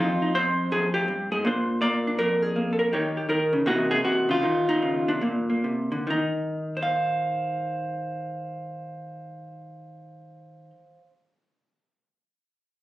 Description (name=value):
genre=solo jazz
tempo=138-163 BPM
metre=4/4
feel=swing 65% on 8ths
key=Eb major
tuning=A4 = 443 Hz
part: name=vintage hollow-body jazz guitar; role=solo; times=0.0-11.0 s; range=F2 to F5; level=-24 LUFS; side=equal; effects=none
room=light reverb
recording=recorded on a phone in the room, club reverb, compression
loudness=-23 LUFS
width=side -16 dB against mid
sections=0.0-6.0 A section; 6.0-9.5 B section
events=slowing down 2.9-6.0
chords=0.0 Fm7; 1.4 Bbadd9; 2.9 Eb7; 3.7 C7#9; 4.4 Ebsus2; 5.2 Bbadd9; 6.0 Ebsus2